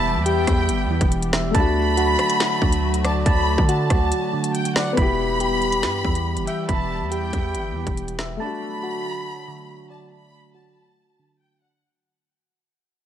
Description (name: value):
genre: hip hop, drill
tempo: 140 BPM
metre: 4/4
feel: half-time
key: unclear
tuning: A4 = 440 Hz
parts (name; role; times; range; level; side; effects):
- warm symphonic violin section; second line; 0.0-11.8 s; F#5 to B5; -27 LUFS; left 1 dB; tape echo
- dark grand piano; accompaniment; 0.0-11.9 s; A3 to G4; -29 LUFS; left 4 dB; low-pass filter
- hollow soft pad; sustained chords; 0.0-11.8 s; D3 to G4; -29 LUFS; left 1 dB; chorus, low-pass filter
- soft electric-piano-like synth keys; arpeggios; 0.0-11.8 s; D3 to B5; -26 LUFS; right 2 dB; chorus, low-pass filter, tape echo
- distorted 808-style bass; bass; 0.0-8.4 s; E1 to D3; -25 LUFS; equal; distortion
- drill drum kit; drums; 0.3-8.3 s; hi-hat, kick drum, rim click, snare drum; -22 LUFS; equal; vintage 12-bit sampler grit
room: light reverb, digital ambience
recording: none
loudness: -19 LUFS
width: side -10 dB against mid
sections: 0.0-5.0 A section; 5.0-11.8 B section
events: break 4.1-5.0; fade-out 5.0-11.8; filter sweep 5.0-11.8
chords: 0.0 Em; 1.5 D; 5.0 Em; 8.4 D